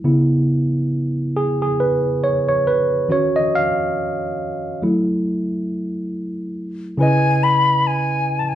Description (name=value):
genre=R&B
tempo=69 BPM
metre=4/4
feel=swing 58% on 16ths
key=C# minor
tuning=A4 = 439 Hz
part: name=tine electric piano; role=accompaniment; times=0.0-8.6 s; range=C#3 to E#5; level=-18 LUFS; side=right 1 dB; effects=none
part: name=concert flute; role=melody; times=7.0-8.6 s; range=G#5 to B5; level=-17 LUFS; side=left 2 dB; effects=none
room=moderate large studio reverb, RT60 0.8 s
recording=band playing live in one room, nothing above 10.4 kHz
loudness=-17 LUFS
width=side -12 dB against mid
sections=0.0-7.0 A section; 7.0-8.6 B section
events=tine electric piano solo 0.0-7.0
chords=0.0 C#m7; 3.1 D#m9; 4.8 F#m7; 7.0 C#m9